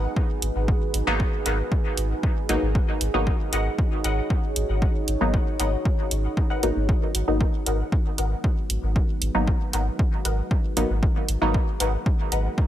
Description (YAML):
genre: dub techno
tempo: 116 BPM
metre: 4/4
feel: straight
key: G# minor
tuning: A4 = 440 Hz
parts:
  - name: deep dark ambient pad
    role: sustained chords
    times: 0.0-12.7 s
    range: D#4 to C#5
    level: -32 LUFS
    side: right 2 dB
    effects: chorus, built-in reverb, sidechain pumping
  - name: filtered dub chord stab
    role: riff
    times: 0.0-12.5 s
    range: A#4 to F#5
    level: -34 LUFS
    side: left 3 dB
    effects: phaser, ensemble chorus, sidechain pumping, dub echo
  - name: soft dub sub bass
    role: bass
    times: 0.0-12.5 s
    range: G#1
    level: -25 LUFS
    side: equal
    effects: sidechain pumping
  - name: electronic kick drum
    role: drums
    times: 0.2-12.7 s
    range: none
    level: -23 LUFS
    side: equal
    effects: none
  - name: electronic hi-hat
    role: drums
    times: 0.4-12.4 s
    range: none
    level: -27 LUFS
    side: right 3 dB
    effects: none
  - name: filtered dub chord stab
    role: stabs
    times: 1.1-11.5 s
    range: F#3 to D#4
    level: -28 LUFS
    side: equal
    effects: chorus, phaser, sidechain pumping, dub echo
room: little or no reverb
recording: none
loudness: -21 LUFS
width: side -12 dB against mid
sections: 0.0-12.7 A section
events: none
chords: 0.0 G#m7